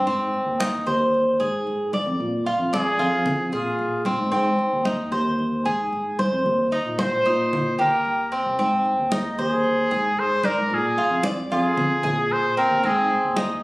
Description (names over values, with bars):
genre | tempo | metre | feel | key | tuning
latin, Cuban son and guajira | 113 BPM | 4/4 | straight | unclear | A4 = 440 Hz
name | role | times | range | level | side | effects
Cuban tres | arpeggios | 0.0-13.6 s | C4 to D5 | -22 LUFS | equal | none
tine electric piano | bass | 0.0-13.6 s | C2 to Bb2 | -27 LUFS | equal | medium stereo tremolo
congas | percussion | 0.1-13.6 s | none | -29 LUFS | equal | none
bright trumpet | melody | 2.8-13.4 s | F4 to C5 | -23 LUFS | equal | none
room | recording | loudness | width
moderate studio reverb, RT60 0.5 s | recorded on a phone in the room, studio reverb, compression | -20 LUFS | side -22 dB against mid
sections
0.0-13.6 A section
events
trumpet solo 0.0-13.6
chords
0.1 Ab; 2.2 Bb7; 4.3 Ab; 6.5 Eb6; 8.6 Ab; 10.7 Bb7; 12.8 Ab